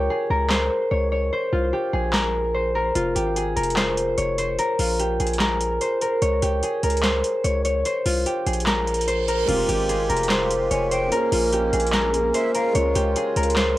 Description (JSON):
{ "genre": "hip hop, trap", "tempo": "147 BPM", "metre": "4/4", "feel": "half-time", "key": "F minor", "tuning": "A4 = 440 Hz", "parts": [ { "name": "concert harp", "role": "melody", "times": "0.0-13.8 s", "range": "F4 to Db5", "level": "-21 LUFS", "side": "equal", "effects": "cassette tape, tape echo" }, { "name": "hard-hitting 808-style bass", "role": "bass", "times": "0.0-13.8 s", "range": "F1 to Db2", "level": "-26 LUFS", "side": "equal", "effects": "none" }, { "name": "booming analog drum machine", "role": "drums", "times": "0.5-13.7 s", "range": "crash cymbal, handclaps, hi-hat, snare drum", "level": "-26 LUFS", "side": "equal", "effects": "overdrive, cassette tape" }, { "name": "reverse cymbal and impact", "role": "sound effects", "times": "8.9-11.1 s", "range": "none", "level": "-36 LUFS", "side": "right 3 dB", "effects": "none" }, { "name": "dark concert grand piano", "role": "accompaniment", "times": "9.5-13.8 s", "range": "Ab3 to Ab4", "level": "-31 LUFS", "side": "left 2 dB", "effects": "cassette tape" }, { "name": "accordion", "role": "sustained chords", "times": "9.5-13.8 s", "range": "Db3 to G4", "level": "-32 LUFS", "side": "right 2 dB", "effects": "light tremolo tuning, cassette tape" }, { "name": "breathy jazz flute", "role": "second line", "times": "10.7-12.7 s", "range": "E5 to Ab5", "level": "-32 LUFS", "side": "right 2 dB", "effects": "cassette tape, tape echo" } ], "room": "light reverb", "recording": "home recording on cassette, vinyl crackle", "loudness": "-19 LUFS", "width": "side -15 dB against mid", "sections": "0.0-9.5 A section; 9.5-13.8 B section", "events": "break 0.0-3.0; reverse cymbal 8.9-9.5; impact 9.5-11.1", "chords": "0.0 Bbm9/Db; 1.3 Ab69; 3.0 Fm; 4.6 Ab69/Bb; 6.2 Bbm9/Db; 7.9 Ab69; 9.5 Fmadd9; 11.1 Bbm7; 12.8 Db" }